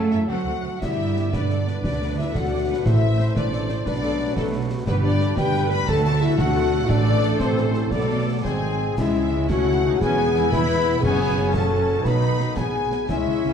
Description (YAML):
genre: cinematic, heroic adventure film score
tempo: 117 BPM (dotted quarters)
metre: 6/8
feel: straight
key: unclear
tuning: A4 = 440 Hz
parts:
  - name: clear symphonic violin section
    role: melody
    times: 0.0-13.5 s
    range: G#4 to B5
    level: -33 LUFS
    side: left 4 dB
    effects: none
  - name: mellow large flute ensemble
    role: second line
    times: 0.0-13.5 s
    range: G#4 to B5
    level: -32 LUFS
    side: left 3 dB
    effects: none
  - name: clear trombone section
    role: sustained chords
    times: 0.0-13.5 s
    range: C#3 to C#4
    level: -34 LUFS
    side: right 3 dB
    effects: none
  - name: mellow French horn section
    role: sustained chords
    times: 0.0-13.5 s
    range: G#3 to B4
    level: -25 LUFS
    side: left 5 dB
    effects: none
  - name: mellow trumpet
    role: stabs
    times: 0.0-13.5 s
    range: G#3 to D5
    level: -32 LUFS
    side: right 3 dB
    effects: none
  - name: rich symphonic cello section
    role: bass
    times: 0.0-13.5 s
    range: E2 to A3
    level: -26 LUFS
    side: right 3 dB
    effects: none
  - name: clear symphonic violin section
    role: second line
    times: 0.1-13.5 s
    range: G#4 to B5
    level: -33 LUFS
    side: left 4 dB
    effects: none
  - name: clear symphonic viola section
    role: accompaniment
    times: 0.1-13.5 s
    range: G#3 to E5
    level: -32 LUFS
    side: right 1 dB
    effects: none
  - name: warm symphonic double bass section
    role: bass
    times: 0.1-13.5 s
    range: E1 to F#2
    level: -27 LUFS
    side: right 3 dB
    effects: none
  - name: concert snare drum, clash cymbals and concert bass drum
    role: drums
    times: 0.8-13.3 s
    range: none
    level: -29 LUFS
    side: equal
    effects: none
  - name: timpani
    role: percussion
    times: 2.9-3.3, 6.9-11.5 s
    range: F#2 to C#3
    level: -25 LUFS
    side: equal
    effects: none
room: wet scoring stage reverb, RT60 1.6 s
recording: dark, warm production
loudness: -19 LUFS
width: side -7 dB against mid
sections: 0.8-9.0 A section; 9.0-13.5 B section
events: none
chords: 0.3 D7; 0.8 G; 1.8 D; 2.9 Am; 3.9 Bm7; 4.9 G; 5.9 D; 6.9 Am; 7.9 Bm7; 8.5 G#7; 9.0 C#m; 10.0 E; 11.0 F#m; 12.1 B